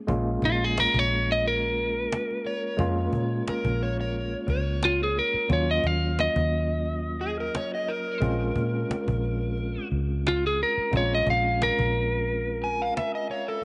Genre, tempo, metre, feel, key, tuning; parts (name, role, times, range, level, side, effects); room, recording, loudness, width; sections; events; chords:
straight-eighth soul blues; 89 BPM; 4/4; swing 54% on 16ths; Bb minor; A4 = 444 Hz
overdriven tine electric piano; accompaniment; 0.0-13.6 s; Gb3 to F4; -34 LUFS; equal; fast tremolo
vintage muted fingered electric bass; bass; 0.1-12.9 s; Bb1 to Bb2; -31 LUFS; equal
cajon; drums; 0.1-13.4 s; -35 LUFS; equal
lightly driven lead guitar; melody; 0.5-13.6 s; F4 to F5; -28 LUFS; equal
overdriven slide guitar; second line; 2.5-13.6 s; Ab4 to Ab5; -34 LUFS; equal; tape echo
moderate spring reverb, RT60 2.6 s; nothing above 10.9 kHz; -26 LUFS; mono
0.0-13.6 A section
0.0 Bbm7; 5.5 Ebm9; 8.2 Bbm9